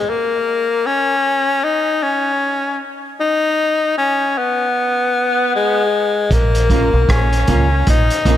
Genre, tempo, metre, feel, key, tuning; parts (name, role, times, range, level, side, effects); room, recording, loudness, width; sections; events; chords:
dub reggae; 77 BPM; 4/4; swing 59% on 16ths; Bb phrygian; A4 = 439 Hz
breathy tenor saxophone; melody; 0.0-8.4 s; Ab3 to Eb4; -16 LUFS; left 2 dB; dub echo
deep dub fingered electric bass; bass; 6.3-8.4 s; Bb1 to Db2; -15 LUFS; right 1 dB
crunchy breakbeat drum kit; drums; 6.3-8.4 s; hi-hat, kick drum, rim click; -19 LUFS; right 1 dB
electric guitar at the edge of break-up; accompaniment; 6.7-8.4 s; Bb3 to Bb4; -21 LUFS; right 3 dB; lush chorus, dub echo
light reverb, small room ambience; echo-heavy mix; -14 LUFS; side -11 dB against mid
0.0-6.3 A section; 6.3-8.4 B section
break 0.0-6.3
0.1 N.C.; 6.3 Bbm